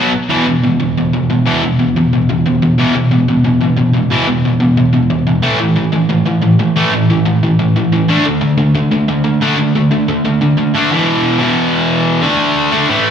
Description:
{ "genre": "punk", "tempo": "181 BPM", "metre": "4/4", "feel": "straight", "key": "unclear", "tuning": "A4 = 440 Hz", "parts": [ { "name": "cranked stack guitar", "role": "solo", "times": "0.0-13.1 s", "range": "E2 to D4", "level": "-11 LUFS", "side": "equal", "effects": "overdrive, slapback echo, ping-pong delay" } ], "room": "light reverb, digital ambience", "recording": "live gig heard through the venue's PA, club reverb", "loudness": "-11 LUFS", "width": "side -8 dB against mid", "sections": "0.3-10.9 A section; 10.9-13.1 B section", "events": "none", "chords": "0.3 E5; 5.4 A5; 8.1 D5; 10.9 E5; 12.2 D5", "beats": "| 0.31 0.64 0.97 1.30 | 1.63 1.96 2.29 2.62 | 2.95 3.28 3.61 3.94 | 4.27 4.61 4.94 5.27 | 5.60 5.93 6.26 6.59 | 6.92 7.25 7.59 7.92 | 8.25 8.58 8.91 9.24 | 9.57 9.90 10.24 10.57 | 10.90 11.23 11.56 11.89 | 12.22 12.55 12.88" }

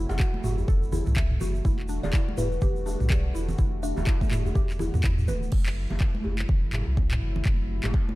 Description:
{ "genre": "afro house", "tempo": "124 BPM", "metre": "4/4", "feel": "swing 59% on 16ths", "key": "unclear", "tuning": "A4 = 440 Hz", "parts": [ { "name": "warm analog pad", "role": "sustained chords", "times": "0.0-8.2 s", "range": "C3 to F#4", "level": "-39 LUFS", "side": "left 1 dB", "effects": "chorus, sidechain pumping" }, { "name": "mallet-like synth pluck", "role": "arpeggios", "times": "0.0-5.4 s", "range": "D4 to E5", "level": "-36 LUFS", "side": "left 1 dB", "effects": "analog chorus, sidechain pumping, tape echo" }, { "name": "warm sub bass", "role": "bass", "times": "0.0-7.9 s", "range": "D1 to E2", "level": "-28 LUFS", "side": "equal", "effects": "sidechain pumping" }, { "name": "kalimba", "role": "melody", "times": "0.1-4.3 s", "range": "B4 to F#5", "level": "-37 LUFS", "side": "left 1 dB", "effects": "tape echo" }, { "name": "congas", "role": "percussion", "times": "0.1-8.2 s", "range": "none", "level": "-36 LUFS", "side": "right 3 dB", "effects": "none" }, { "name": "djembe", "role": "percussion", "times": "0.1-8.1 s", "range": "none", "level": "-37 LUFS", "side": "left 1 dB", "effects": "none" }, { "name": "egg shaker", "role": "percussion", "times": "0.1-5.5 s", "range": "none", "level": "-47 LUFS", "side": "right 3 dB", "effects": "none" }, { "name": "afro-pop drum kit", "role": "drums", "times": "0.2-7.9 s", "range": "crash cymbal, handclaps, toms", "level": "-33 LUFS", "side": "right 1 dB", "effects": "none" }, { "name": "electronic kick drum", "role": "drums", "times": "0.2-8.1 s", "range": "none", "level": "-24 LUFS", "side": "equal", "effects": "none" } ], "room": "small room reverb", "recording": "dark, warm production", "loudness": "-23 LUFS", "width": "side -18 dB against mid", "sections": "0.0-5.5 A section; 5.5-8.2 B section", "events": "drop 0.0-5.5", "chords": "0.0 F#m7b5; 1.6 Em11; 5.5 F#m7b5", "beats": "0.20 0.68 1.17 | 1.65 2.13 2.62 3.10 | 3.58 4.07 4.55 5.04 | 5.52 6.00 6.49 6.97 | 7.46 7.94" }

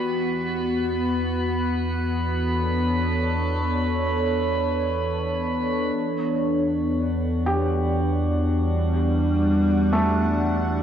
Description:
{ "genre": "ambient", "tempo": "61 BPM", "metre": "3/4", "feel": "straight", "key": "E dorian", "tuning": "A4 = 441 Hz", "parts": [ { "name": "evolving wavetable pad", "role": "sustained chords", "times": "0.0-10.8 s", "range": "E3 to F#5", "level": "-23 LUFS", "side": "equal", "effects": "chorus, built-in reverb" }, { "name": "warm sub bass", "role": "bass", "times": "0.0-10.8 s", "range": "E2", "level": "-26 LUFS", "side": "equal", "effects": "none" }, { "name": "drifting glass-harmonics texture", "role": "texture", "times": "0.0-10.8 s", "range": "F#4 to B5", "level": "-32 LUFS", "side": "equal", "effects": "chorus, built-in reverb" }, { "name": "felt-muted upright piano", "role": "arpeggios", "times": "7.5-10.8 s", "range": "A3 to G4", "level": "-27 LUFS", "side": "equal", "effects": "diffuse ambient delay" } ], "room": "wet concert hall reverb, RT60 1.9 s", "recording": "worn, warbling old tape, cassette tape, warbly pitch drift", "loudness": "-21 LUFS", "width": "side -9 dB against mid", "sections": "0.0-6.0 A section; 6.0-10.8 B section", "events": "none", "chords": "0.0 Bm7/E; 6.0 Em9", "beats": "| 0.01 1.00 1.98 | 2.96 3.96 4.96 | 5.96 6.96 7.96 | 8.95 9.93" }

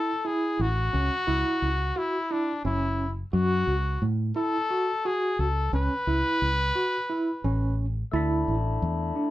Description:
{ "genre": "progressive instrumental, progressive", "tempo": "175 BPM (eighths)", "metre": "7/8", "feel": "straight", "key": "unclear", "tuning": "A4 = 439 Hz", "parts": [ { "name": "clear trumpet", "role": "melody", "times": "0.0-7.8 s", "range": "D4 to B4", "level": "-28 LUFS", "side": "left 2 dB", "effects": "none" }, { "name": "overdriven tine electric piano", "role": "arpeggios", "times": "0.0-9.3 s", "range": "C#4 to F#4", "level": "-29 LUFS", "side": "right 2 dB", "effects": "medium tremolo" }, { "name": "fingered electric bass", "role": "bass", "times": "0.6-9.1 s", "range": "F#1 to A2", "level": "-26 LUFS", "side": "equal", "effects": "none" }, { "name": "percussive tonewheel organ", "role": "accompaniment", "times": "8.1-9.3 s", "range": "A3 to E4", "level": "-30 LUFS", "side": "left 4 dB", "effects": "none" } ], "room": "light reverb", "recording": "band playing live in one room", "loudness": "-24 LUFS", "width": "side -15 dB against mid", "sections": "0.0-9.3 A section", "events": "none", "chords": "0.0 Dsus2 (rootless); 0.9 Dmaj9 (rootless); 3.3 F#m; 5.7 C#m7; 8.1 Dsus2", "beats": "0.25 0.60 | 0.94 1.28 1.62 1.97 2.31 2.65 2.99 | 3.33 3.68 4.02 4.36 4.71 5.05 5.39 | 5.73 6.08 6.42 6.76 7.11 7.45 7.79 | 8.13 8.48 8.82 9.16" }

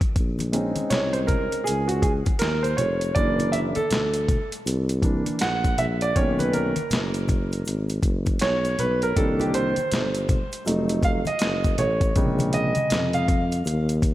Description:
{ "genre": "hip hop, jazz-hop", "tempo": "80 BPM", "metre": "4/4", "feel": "swing 62% on 16ths", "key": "Bb minor", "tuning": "A4 = 440 Hz", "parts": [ { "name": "warm concert grand piano", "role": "accompaniment", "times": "0.0-13.9 s", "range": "C3 to Gb5", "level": "-24 LUFS", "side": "right 1 dB", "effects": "none" }, { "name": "dusty soul sampler-style drum kit", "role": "drums", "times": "0.0-14.1 s", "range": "hi-hat, kick drum, snare drum", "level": "-25 LUFS", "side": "equal", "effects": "overdrive" }, { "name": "breathy tuba", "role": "bass", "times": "0.2-14.1 s", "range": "F1 to F2", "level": "-26 LUFS", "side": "equal", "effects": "none" }, { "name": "egg shaker and congas", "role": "percussion", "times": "0.2-14.1 s", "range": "none", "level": "-35 LUFS", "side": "left 3 dB", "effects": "none" } ], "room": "moderate lush hall reverb, RT60 2.5 s", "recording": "dreamy mix soaked in reverb", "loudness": "-21 LUFS", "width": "side -15 dB against mid", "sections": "0.2-14.1 A section", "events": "grand piano solo 0.2-14.1", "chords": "0.2 Bbm11; 3.2 Gb7alt; 6.2 Bmaj7; 9.2 Cm7; 10.7 F7b9; 12.2 Bbm7", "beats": "| 0.16 0.91 1.66 2.41 | 3.16 3.91 4.66 5.41 | 6.16 6.91 7.66 8.41 | 9.16 9.91 10.66 11.41 | 12.16 12.91 13.66" }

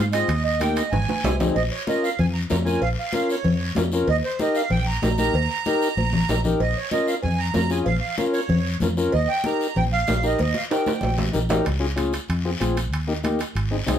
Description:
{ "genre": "latin, cumbia", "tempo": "190 BPM", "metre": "4/4", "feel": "straight", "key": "unclear", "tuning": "A4 = 439 Hz", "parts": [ { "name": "accordion", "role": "melody", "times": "0.0-11.2 s", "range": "C5 to Bb5", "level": "-26 LUFS", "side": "right 4 dB", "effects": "light tremolo tuning" }, { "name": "combo organ", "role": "accompaniment", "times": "0.0-14.0 s", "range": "Bb3 to Bb4", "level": "-24 LUFS", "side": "left 2 dB", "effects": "none" }, { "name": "fingered electric bass", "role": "bass", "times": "0.0-14.0 s", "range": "Ab1 to Ab2", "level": "-24 LUFS", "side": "equal", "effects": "none" }, { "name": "guiro", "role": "percussion", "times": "0.1-14.0 s", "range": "none", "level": "-35 LUFS", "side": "left 4 dB", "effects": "none" }, { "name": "timbales and cowbell", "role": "percussion", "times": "0.1-14.0 s", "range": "none", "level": "-30 LUFS", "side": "right 2 dB", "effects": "none" }, { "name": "congas", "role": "percussion", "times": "0.6-14.0 s", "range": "none", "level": "-28 LUFS", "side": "left 1 dB", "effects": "none" } ], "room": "wet studio ambience, RT60 0.5 s", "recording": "band playing live in one room", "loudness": "-20 LUFS", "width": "side -9 dB against mid", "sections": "0.0-1.6 A section; 1.6-11.7 B section; 11.7-14.0 C section", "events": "drum fill 0.9-1.6, 6.0-6.6, 10.4-11.7", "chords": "0.3 Eb; 0.9 Ab; 1.6 Bbm; 4.1 Eb; 6.6 Bbm; 9.1 Eb; 11.7 Db; 12.3 Fm; 12.9 Eb", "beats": "| 0.29 0.60 0.92 1.24 | 1.55 1.87 2.19 2.50 | 2.82 3.14 3.45 3.77 | 4.09 4.40 4.72 5.03 | 5.35 5.66 5.98 6.30 | 6.61 6.93 7.24 7.56 | 7.87 8.19 8.50 8.82 | 9.13 9.45 9.77 10.08 | 10.39 10.71 11.03 11.34 | 11.66 11.97 12.29 12.61 | 12.92 13.24 13.55 13.87" }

